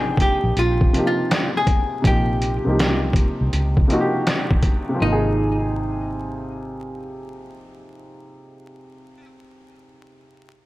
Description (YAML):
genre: lo-fi hip hop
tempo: 81 BPM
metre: 4/4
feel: swing 66% on 16ths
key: Ab major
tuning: A4 = 441 Hz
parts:
  - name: vintage hollow-body jazz guitar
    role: melody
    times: 0.0-9.3 s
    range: Eb4 to Ab4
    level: -24 LUFS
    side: equal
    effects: analog delay
  - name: warm upright piano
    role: accompaniment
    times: 0.0-10.5 s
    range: C3 to G5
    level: -24 LUFS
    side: equal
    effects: cassette tape
  - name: vintage muted fingered electric bass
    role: bass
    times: 0.0-9.3 s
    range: Ab1 to Db2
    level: -23 LUFS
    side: equal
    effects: none
  - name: trip hop sampler-style drum kit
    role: drums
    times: 0.2-4.9 s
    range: hi-hat, kick drum, snare drum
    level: -19 LUFS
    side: equal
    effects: overdrive
room: light reverb, digital ambience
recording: vinyl crackle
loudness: -17 LUFS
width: side -17 dB against mid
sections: 0.0-5.0 A section; 5.0-8.0 B section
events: none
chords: 0.0 Bb9sus4; 2.0 Ebadd9/Bb; 5.0 Ab69